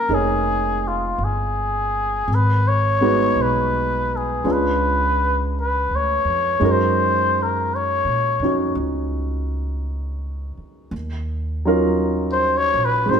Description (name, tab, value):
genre	jazz ballad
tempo	55 BPM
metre	4/4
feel	swing 68% on 8ths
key	unclear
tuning	A4 = 440 Hz
part	trumpet with cup mute	melody	0.0-13.2 s	F4 to Db5	-20 LUFS	left 2 dB	none
part	warm grand piano	accompaniment	0.0-13.2 s	Gb3 to Db5	-22 LUFS	right 1 dB	none
part	upright bass	bass	0.1-13.2 s	F1 to Bb2	-24 LUFS	equal	none
room	moderate stone room reverb, RT60 1.2 s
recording	band playing live in one room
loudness	-18 LUFS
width	side -7 dB against mid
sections	0.0-13.2 A section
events	muted trumpet solo 0.0-13.2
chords	0.0 Bbm9; 2.3 Abm7; 4.4 Db7b9; 6.6 Gb6; 10.9 Ebm7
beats	0.10 1.19 | 2.28 3.36 4.45 5.53 | 6.61 7.69 8.76 9.84 | 10.92 12.00 13.09